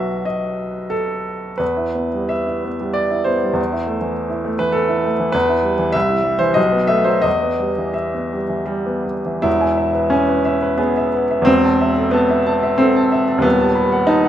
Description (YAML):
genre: classical, romantic character piece for solo piano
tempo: 74-103 BPM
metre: 3/4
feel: rubato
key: E minor, E major from 9.5 s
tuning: A4 = 441 Hz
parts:
  - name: clear baby grand piano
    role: solo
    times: 0.0-14.3 s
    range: D#1 to B5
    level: -15 LUFS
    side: equal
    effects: none
room: light reverb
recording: close, detailed microphones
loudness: -15 LUFS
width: side -11 dB against mid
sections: 0.0-9.5 A section; 9.5-14.3 B section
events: none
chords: 0.0 B; 1.6 Em; 3.6 Am/E; 5.3 Em; 5.9 C; 6.6 B7; 7.2 Em; 9.5 E; 11.5 Am/E; 13.4 B7/D#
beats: 0.28 0.94 | 1.61 2.33 2.97 | 3.58 4.17 4.75 | 5.34 5.95 6.57 | 7.25 7.97 8.69 | 9.46 10.14 10.81 | 11.47 12.13 12.78 | 13.45 14.10